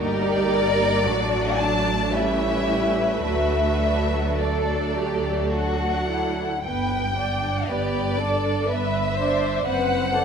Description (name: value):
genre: classical, slow romantic movement for string orchestra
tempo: 52-62 BPM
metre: 3/4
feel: rubato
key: D major, G major from 6.7 s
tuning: A4 = 440 Hz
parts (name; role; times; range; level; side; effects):
- rich studio violin section; melody; 0.0-10.2 s; D5 to A5; -25 LUFS; left 3 dB; none
- clear studio violin section; second line; 0.0-10.2 s; C#4 to D5; -27 LUFS; left 2 dB; none
- rich studio viola section; accompaniment; 0.0-10.2 s; F#3 to D5; -26 LUFS; right 3 dB; none
- rich studio cello section; bass; 0.0-10.2 s; F#2 to Bb4; -30 LUFS; right 3 dB; none
- rich studio double bass section; bass; 0.0-10.2 s; F#1 to D2; -28 LUFS; right 2 dB; none
room: wet scoring stage reverb, RT60 1.7 s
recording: minimal, uncompressed stereo recording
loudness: -20 LUFS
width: side -6 dB against mid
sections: 0.0-6.7 A section; 6.7-10.2 B section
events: none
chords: 0.0 Eb/G; 1.1 D/A; 2.1 A9; 3.3 D; 6.7 G; 9.7 D7/F#